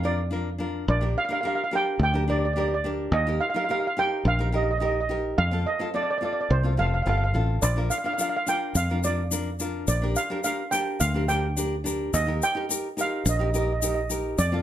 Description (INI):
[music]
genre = calypso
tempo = 107 BPM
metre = 4/4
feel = straight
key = unclear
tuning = A4 = 440 Hz
[part]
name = nylon-string guitar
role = accompaniment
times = 0.0-14.6 s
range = C4 to Bb4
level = -30 LUFS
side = left 1 dB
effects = none
[part]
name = fingered electric bass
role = bass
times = 0.0-14.6 s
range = F1 to F2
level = -25 LUFS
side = equal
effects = none
[part]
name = steel pan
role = melody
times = 0.1-14.6 s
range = C5 to G5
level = -27 LUFS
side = right 3 dB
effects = none
[part]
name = egg shaker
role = percussion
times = 7.6-14.5 s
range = none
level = -30 LUFS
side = left 5 dB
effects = none
[sound]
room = moderate studio reverb, RT60 0.5 s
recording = lossy compression artefacts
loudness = -23 LUFS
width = side -11 dB against mid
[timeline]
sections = 0.0-14.6 A section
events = none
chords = 0.0 Bb; 0.9 Gm/Bb; 3.1 Eb; 5.4 F; 7.6 Bb; 9.9 Gm/Bb; 12.1 Eb